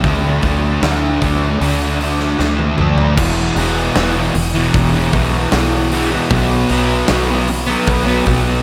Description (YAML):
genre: rock, shoegaze and dream pop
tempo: 76 BPM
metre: 4/4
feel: straight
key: unclear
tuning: A4 = 439 Hz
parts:
  - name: fuzz guitar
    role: riff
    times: 0.0-8.6 s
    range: E2 to D4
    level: -18 LUFS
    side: equal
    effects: distortion, subtle chorus
  - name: deep dub fingered electric bass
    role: bass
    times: 0.0-8.6 s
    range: E1 to D2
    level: -22 LUFS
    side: equal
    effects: none
  - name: big rock drum kit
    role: drums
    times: 0.0-8.4 s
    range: crash cymbal, hi-hat, kick drum, snare drum, toms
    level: -22 LUFS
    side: equal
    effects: none
room: wet lush hall reverb, RT60 2.9 s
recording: dreamy mix soaked in reverb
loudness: -15 LUFS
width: mono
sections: 0.0-3.2 A section; 3.2-8.6 B section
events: drum fill 2.4-3.2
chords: 0.0 D5; 3.2 E5; 6.3 B5